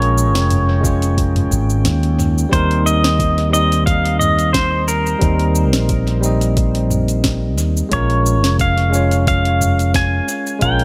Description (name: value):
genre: sunset chillout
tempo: 89 BPM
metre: 4/4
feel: swing 54% on 16ths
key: Eb mixolydian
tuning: A4 = 442 Hz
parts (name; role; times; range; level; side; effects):
- pedal steel guitar; melody; 0.0-10.8 s; Bb4 to Ab5; -22 LUFS; equal; dub echo
- bell-like tine electric piano; accompaniment; 0.0-10.8 s; G3 to Eb5; -23 LUFS; equal; dub echo
- fretless electric bass; bass; 0.0-10.8 s; F1 to Eb2; -19 LUFS; equal; analog chorus
- smooth R&B drum kit; drums; 0.0-10.8 s; cabasa, hi-hat, snare drum, toms; -25 LUFS; equal; analog delay
- drifting glass-harmonics texture; texture; 0.0-2.5 s; G5; -39 LUFS; equal; chorus, built-in reverb
- electronic kick drum; drums; 0.8-10.8 s; none; -22 LUFS; equal; none
room: light reverb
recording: echo-heavy mix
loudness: -16 LUFS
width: mono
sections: 0.0-2.5 A section; 2.5-10.8 B section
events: none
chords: 0.0 Bbm7; 2.5 Eb6; 7.9 Bbm7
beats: 0.50 1.18 1.85 | 2.52 3.20 3.87 4.55 | 5.22 5.90 6.57 7.24 | 7.92 8.59 9.27 9.94 | 10.62